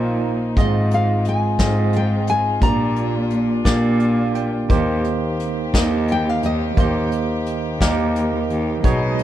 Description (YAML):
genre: acoustic folk-pop ballad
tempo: 58 BPM (dotted quarters)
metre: 6/8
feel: straight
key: Eb major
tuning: A4 = 443 Hz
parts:
  - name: nylon-string guitar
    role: melody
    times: 0.0-8.5 s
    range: Eb5 to Bb5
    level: -24 LUFS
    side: left 3 dB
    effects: none
  - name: barky tine electric piano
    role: accompaniment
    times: 0.0-9.2 s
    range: Ab1 to G5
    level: -22 LUFS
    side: right 3 dB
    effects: slow stereo tremolo
  - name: warm chamber string section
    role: sustained chords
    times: 0.0-9.2 s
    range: Eb3 to D#5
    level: -28 LUFS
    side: left 2 dB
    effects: none
  - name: warm cello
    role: bass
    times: 0.0-9.1 s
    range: Eb2 to B2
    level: -21 LUFS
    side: equal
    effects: none
  - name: soft brush drum kit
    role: drums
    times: 0.6-9.2 s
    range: hi-hat, kick drum, snare drum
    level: -20 LUFS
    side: equal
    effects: none
room: light reverb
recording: dark, warm production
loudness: -17 LUFS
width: side -12 dB against mid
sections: 0.0-4.7 A section; 4.7-9.2 B section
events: none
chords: 0.0 Bbsus4; 0.6 Fm7/Ab; 2.6 Gm/Bb; 4.7 Eb6